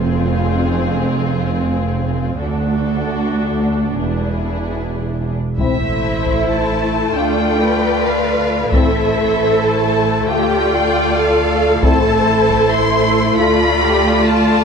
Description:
cinematic, epic orchestral film score; free time; A minor from 5.6 s; A4 = 438 Hz
rich studio violin section; melody; 0.0-14.6 s; Ab4 to C6; -21 LUFS; left 3 dB
warm studio violin section; second line; 0.0-14.6 s; E4 to D5; -22 LUFS; left 4 dB
rich studio viola section; accompaniment; 0.0-14.6 s; A3 to F4; -21 LUFS; right 1 dB
rich symphonic double bass section; bass; 0.0-14.6 s; E1 to D2; -20 LUFS; right 3 dB
warm symphonic cello section; bass; 0.0-14.6 s; D2 to B4; -20 LUFS; right 2 dB
warm French horn section; sustained chords; 5.6-13.5 s; A3 to F4; -23 LUFS; left 6 dB
taiko ensemble; drums; 5.6-12.7 s; -20 LUFS; equal
moderate scoring stage reverb, RT60 1.9 s; -14 LUFS; side -6 dB against mid
0.0-5.6 A section; 5.6-14.6 B section
build-up 0.0-5.6
0.0 Fm; 2.4 D; 4.0 E7; 5.6 Am; 7.2 Dm; 8.7 Am; 10.3 Dm; 11.8 Am; 13.4 Dm

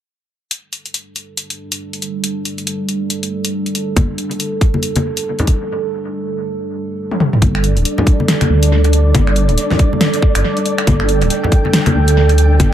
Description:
deep dubstep; 139 BPM; 4/4; swing 59% on 16ths, half-time; A4 = 440 Hz
dark analog pad; sustained chords; 1.6-12.7 s; G3 to A4; -20 LUFS; right 3 dB; chorus, phaser
deep house drum kit; drums; 0.5-12.7 s; finger snaps, hi-hat, snare drum, toms; -19 LUFS; left 1 dB; dub echo
electronic kick drum; drums; 4.0-12.7 s; -13 LUFS; equal
congas; percussion; 4.0-12.7 s; -20 LUFS; left 2 dB; dub echo
dark detuned saw bass; bass; 7.4-12.7 s; D1 to D2; -13 LUFS; equal
flickering grainy texture; texture; 7.7-12.7 s; D4 to G5; -22 LUFS; left 1 dB; built-in reverb
light reverb; echo-heavy mix; -13 LUFS; side -11 dB against mid
0.5-7.4 A section; 7.4-12.7 B section
filter sweep on analog synth pad 0.5-7.4; break 5.7-7.4; drum fill 7.1-7.4
0.5 Gsus2

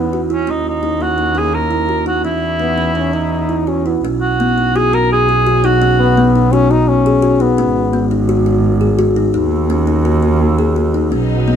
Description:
contemporary instrumental, chamber music in an uneven meter; 170 BPM; 5/4; straight; A4 = 439 Hz
clear French horn; second line; 0.0-8.1 s; B3 to D#4; -16 LUFS; left 4 dB
kalimba; arpeggios; 0.0-11.6 s; B3 to G#4; -17 LUFS; left 2 dB
bright double bass; bass; 0.0-11.6 s; G#1 to E2; -16 LUFS; right 3 dB
warm cor anglais; melody; 0.3-6.4 s; C#4 to A#4; -16 LUFS; right 1 dB
rich chamber string section; sustained chords; 11.1-11.6 s; F#3 to D#4; -22 LUFS; left 2 dB
light reverb; minimal, uncompressed stereo recording; -12 LUFS; side -8 dB against mid
0.0-4.0 A section; 4.0-11.6 B section
0.5 D#m7; 2.2 E5; 4.0 B; 7.6 G#m7; 9.3 D#m

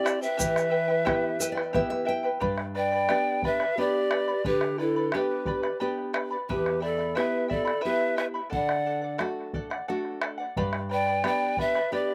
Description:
andean folk, Andean ensemble; 88 BPM; 3/4; straight; A4 = 440 Hz
mellow pan flute; melody; 0.0-12.1 s; A4 to G5; -31 LUFS; equal
breathy large pan pipes; second line; 0.0-12.1 s; E4 to D5; -32 LUFS; equal
charango; accompaniment; 0.0-12.1 s; E4 to B5; -34 LUFS; equal; slapback echo
nylon-string guitar; accompaniment; 0.0-12.1 s; E2 to G5; -35 LUFS; equal
bombo; percussion; 0.1-12.1 s; -36 LUFS; equal
egg shaker; percussion; 0.1-1.6 s; -35 LUFS; equal
little or no reverb; recorded outdoors, with no room sound; -27 LUFS; mono
0.0-2.4 A section; 2.4-12.1 B section
nylon-string guitar fill 1.1-2.4
0.4 Em; 2.4 G; 6.5 Em; 8.5 D; 10.6 G

